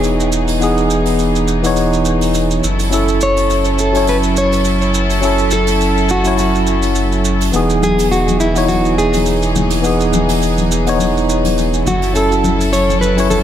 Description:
sunset chillout; 104 BPM; 4/4; swing 56% on 16ths; E major; A4 = 437 Hz
nylon-string guitar; melody; 0.0-13.4 s; E4 to C#5; -18 LUFS; equal; tape echo
barky tine electric piano; accompaniment; 0.0-13.4 s; E3 to C#5; -16 LUFS; equal; auto-pan, tape echo
rich studio string section; sustained chords; 0.0-13.4 s; E3 to A4; -21 LUFS; equal; low-pass filter
warm sub bass; bass; 0.0-13.4 s; E1 to F#1; -19 LUFS; equal
hi-hat and shaker; drums; 0.0-13.4 s; -24 LUFS; right 5 dB; tape echo
congas; percussion; 7.8-13.4 s; -22 LUFS; left 5 dB; tape echo
moderate spring reverb, RT60 1.9 s, small room ambience; echo-heavy mix; -12 LUFS; side -10 dB against mid
0.0-13.4 A section
0.0 Emaj7; 2.6 F#m7; 7.5 Emaj7; 11.9 F#m7

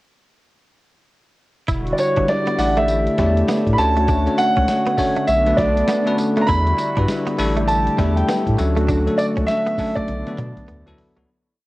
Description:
R&B, new jack swing; 100 BPM; 4/4; swing 61% on 16ths; E dorian; A4 = 438 Hz
warm analog pad; sustained chords; 1.7-11.3 s; D3 to C#5; -25 LUFS; equal; chorus, cassette tape
direct-recorded clean electric guitar; riff; 1.7-11.3 s; F#3 to E4; -29 LUFS; right 3 dB; wide subtle chorus, cassette tape
round analog bass; bass; 1.7-11.3 s; E1 to B2; -21 LUFS; equal
dusty soul sampler-style drum kit; drums; 1.7-11.3 s; hi-hat, kick drum, snare drum, tambourine, toms; -27 LUFS; equal; cassette tape
warm concert grand piano; melody; 1.9-10.9 s; C#5 to B5; -20 LUFS; right 1 dB; cassette tape
bell-like tine electric piano; accompaniment; 2.2-11.3 s; F#3 to D5; -22 LUFS; left 2 dB; cassette tape
moderate spring reverb, RT60 1.8 s, digital ambience; home recording on cassette; -16 LUFS; side -18 dB against mid
1.7-11.3 chorus
fade-out 8.9-11.3; drum fill 10.1-11.3
1.7 Em9; 2.6 A7sus4; 3.8 Dmaj7; 5.3 Bm9; 6.5 Em9; 7.4 A7sus4; 8.6 Dmaj7; 10.1 Bm7; 10.7 D69

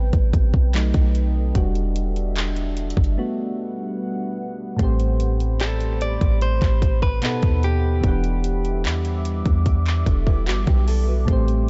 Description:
contemporary R&B; 74 BPM; 4/4; straight; A dorian; A4 = 439 Hz
soft electric-piano-like synth keys; accompaniment; 0.0-11.7 s; A2 to F#5; -30 LUFS; equal; chorus
deep dark ambient pad; sustained chords; 0.0-11.7 s; C3 to D6; -35 LUFS; equal; chorus, built-in reverb
clean 808-style bass; bass; 0.0-11.7 s; E1 to E2; -23 LUFS; equal
trap drum kit; drums; 0.1-11.7 s; handclaps, hi-hat, kick drum; -24 LUFS; equal
direct-recorded clean electric guitar; melody; 5.6-8.8 s; G4 to D5; -30 LUFS; equal; digital delay
synth chime; texture; 5.6-8.3 s; D5 to F#5; -46 LUFS; equal
nylon-string guitar; arpeggios; 10.1-11.5 s; A3 to B4; -33 LUFS; equal; digital delay
digital ambience; dark, warm production, nothing above 7.7 kHz, faint mains hum; -21 LUFS; mono
0.0-4.8 A section; 4.8-11.7 B section
synth keys solo 0.0-4.8; break 3.2-4.8
0.0 Am9; 0.7 B7; 1.6 Em7; 3.2 Gmaj7; 4.8 Am9; 7.2 B7; 8.0 Em7

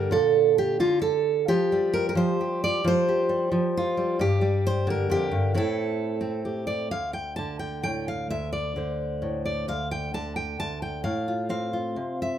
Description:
folk, solo fingerstyle acoustic guitar; 132 BPM; 3/4; straight; D minor; A4 = 441 Hz
fingerpicked steel-string acoustic guitar; solo; 0.0-12.4 s; D2 to A5; -23 LUFS; right 1 dB
light reverb; minimal, uncompressed stereo recording; -23 LUFS; side -9 dB against mid
0.0-6.9 A section; 6.9-12.4 B section
0.1 Bbmaj7; 1.5 Fsus2; 5.5 Am7; 6.9 Dm7; 9.7 N.C.; 11.0 F

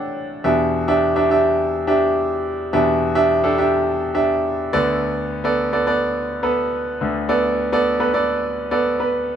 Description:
pop; 105 BPM; 4/4; straight; A4 = 439 Hz
clear concert grand piano; solo; 0.0-9.4 s; D2 to G5; -17 LUFS; right 1 dB
moderate studio ambience, RT60 0.5 s; band playing live in one room; -17 LUFS; side -8 dB against mid
0.0-9.4 A section
0.4 Em7; 4.7 Bm7/D

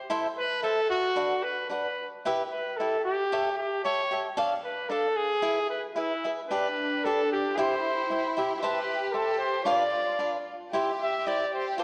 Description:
mexican folk, mariachi; 113 BPM; 2/4; rubato; A minor; A4 = 440 Hz
cavaquinho; accompaniment; 0.1-11.8 s; D4 to B5; -33 LUFS; equal
bright trumpet; melody; 0.4-11.7 s; E4 to E5; -31 LUFS; equal
warm studio violin section; second line; 6.5-11.8 s; D4 to G4; -35 LUFS; equal
wet scoring stage reverb, RT60 2.0 s; worn, warbling old tape, cassette tape, warbly pitch drift; -28 LUFS; mono
0.0-11.8 A section
0.1 Am; 1.2 Bm; 2.2 Em; 3.3 A7; 4.4 Dm; 5.4 E; 6.5 G; 7.6 C; 8.6 Amadd9; 9.7 Bdim; 10.7 C

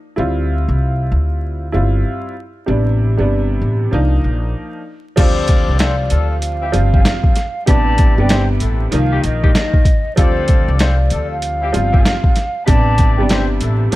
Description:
hip hop, boom-bap hip-hop; 96 BPM; 4/4; swing 62% on 16ths; D dorian; A4 = 440 Hz
warm upright piano; accompaniment; 0.2-14.0 s; C3 to F4; -21 LUFS; right 1 dB; high-pass filter, low-pass filter
upright bass; bass; 0.2-14.0 s; G1 to D2; -16 LUFS; equal
mellow hollow concert flute; melody; 5.2-14.0 s; C5 to A5; -22 LUFS; equal; high-pass filter, low-pass filter, ping-pong delay
mellow horn section; stabs; 5.2-13.9 s; G3 to D5; -25 LUFS; left 6 dB; high-pass filter, low-pass filter, ping-pong delay
boom bap sampler-style drum kit; drums; 5.2-14.0 s; crash cymbal, hi-hat, kick drum, snare drum; -14 LUFS; equal
small room ambience; vinyl crackle; -13 LUFS; side -17 dB against mid
0.0-5.2 A section; 5.2-14.0 B section
0.2 Dm11; 2.7 Am11; 3.9 Cm11; 5.2 Dm11; 7.7 Am11; 8.9 Cm7; 10.2 Dm11; 12.7 Am11

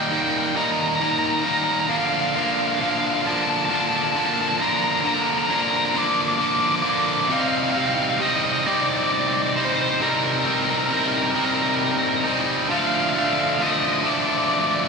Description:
rock; 44 BPM (dotted quarters); 6/8; straight; C dorian; A4 = 440 Hz
crunchy overdriven guitar; melody; 0.0-14.9 s; Bb4 to D6; -23 LUFS; equal
distorted electric guitar; riff; 0.0-14.9 s; C3 to Eb4; -20 LUFS; equal; overdrive
wet recital hall reverb, RT60 1.3 s; recorded in a church or concert hall; -19 LUFS; side -4 dB against mid
0.0-7.3 A section; 7.3-14.9 B section
build-up 0.0-7.3
0.0 Eb; 1.9 Bb/D; 7.3 Cm7; 12.7 Dm

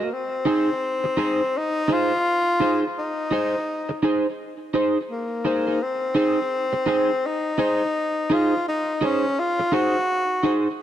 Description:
reggae; 84 BPM; 4/4; swing 63% on 16ths; Ab mixolydian; A4 = 438 Hz
breathy tenor saxophone; melody; 0.0-10.6 s; Bb3 to Gb4; -23 LUFS; left 1 dB; tape echo
electric guitar at the edge of break-up; accompaniment; 0.0-10.7 s; Eb4 to C5; -23 LUFS; right 1 dB; analog chorus, tape echo
moderate plate reverb, RT60 3.1 s; dark, warm production; -20 LUFS; side -11 dB against mid
0.1-10.8 A section
0.1 Ab

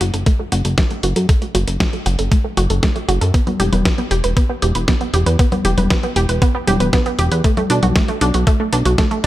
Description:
italo disco; 117 BPM; 4/4; straight; A4 = 440 Hz
analog pluck; arpeggios; 0.0-9.3 s; A3 to B4; -20 LUFS; right 2 dB; chorus, digital delay
chorused synth bass; bass; 0.0-9.3 s; E1 to F#2; -18 LUFS; equal
dusty soul sampler-style drum kit; drums; 0.0-9.3 s; congas, hi-hat, snare drum; -21 LUFS; left 1 dB
electronic kick drum; drums; 0.3-9.1 s; -16 LUFS; equal
little or no reverb; -14 LUFS; side -15 dB against mid
0.0-9.3 A section
filter sweep on synth arpeggio sound 0.0-9.3
0.0 F#m; 3.3 Em; 7.4 Bm7

